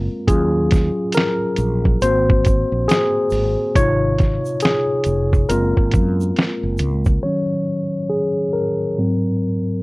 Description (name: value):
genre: lo-fi hip hop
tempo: 69 BPM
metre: 4/4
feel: swing 62% on 16ths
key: Eb dorian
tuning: A4 = 440 Hz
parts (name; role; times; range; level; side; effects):
- tine electric piano; accompaniment; 0.0-9.8 s; Ab2 to Db5; -18 LUFS; left 1 dB; medium stereo tremolo, cassette tape, low-pass filter
- mellow fretless electric bass; bass; 0.0-7.2 s; F1 to Gb2; -20 LUFS; equal; none
- lo-fi sampler-style drum kit; drums; 0.3-7.2 s; hi-hat, kick drum, snare drum; -17 LUFS; equal; none
- egg shaker; percussion; 0.3-7.2 s; none; -42 LUFS; right 5 dB; none
room: light reverb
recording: worn, warbling old tape, cassette tape, warbly pitch drift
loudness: -16 LUFS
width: side -22 dB against mid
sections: 0.0-7.2 A section; 7.2-9.8 B section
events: tine electric piano solo 0.0-7.2, 7.2-9.8; filter sweep on tine electric piano 7.2-9.8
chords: 0.3 Ebm9; 2.0 Ab9; 3.8 Dbmaj7/Ab; 5.5 Gbmaj9#11; 7.2 Ebm7; 9.0 Ab9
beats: | 0.28 1.15 2.01 2.88 | 3.75 4.62 5.49 6.36 | 7.23 8.10 8.97